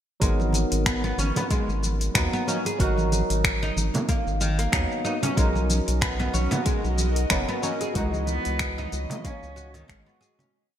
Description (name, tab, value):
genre	organic downtempo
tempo	93 BPM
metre	4/4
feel	swing 56% on 16ths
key	G# minor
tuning	A4 = 440 Hz
part	barky tine electric piano	accompaniment	0.2-10.5 s	E3 to A#4	-30 LUFS	right 1 dB	overdrive, lush chorus, sidechain pumping, digital delay
part	oud	arpeggios	0.2-10.5 s	D#3 to G#4	-30 LUFS	equal	digital delay
part	round analog bass	bass	0.2-10.0 s	F#1 to D#2	-26 LUFS	equal	sidechain pumping
part	afro-pop drum kit	drums	0.2-10.5 s	finger snaps, hi-hat, shaker	-29 LUFS	left 1 dB	overdrive, gated reverb
part	electronic kick drum	drums	0.2-10.0 s	none	-26 LUFS	equal	none
part	congas	percussion	0.4-10.5 s	none	-32 LUFS	right 2 dB	none
part	bowed-like drone	sustained chords	6.3-10.5 s	F#4 to D#5	-35 LUFS	left 1 dB	built-in reverb, sidechain pumping
part	dark cello	melody	8.0-10.4 s	G#3 to C#4	-34 LUFS	equal	none
room	moderate lush hall reverb, RT60 2.4 s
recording	bright 1980s-style digital production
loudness	-22 LUFS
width	side -10 dB against mid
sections	0.2-10.5 groove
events	fade-out 7.1-10.5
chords	0.2 G#m7; 5.4 Bmaj7; 8.0 C#m9